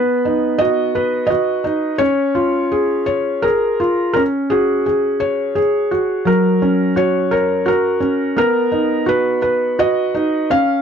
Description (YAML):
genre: children's music, lullaby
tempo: 85 BPM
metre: 3/4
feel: straight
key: unclear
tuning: A4 = 440 Hz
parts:
  - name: felt-muted upright piano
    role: solo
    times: 0.0-10.8 s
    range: F#3 to E#5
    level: -14 LUFS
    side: equal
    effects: none
room: light reverb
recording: dark, warm production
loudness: -14 LUFS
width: side -7 dB against mid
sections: 0.0-10.8 A section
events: none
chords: 0.0 B; 2.0 C#; 4.2 C#sus4; 6.3 F#; 8.4 B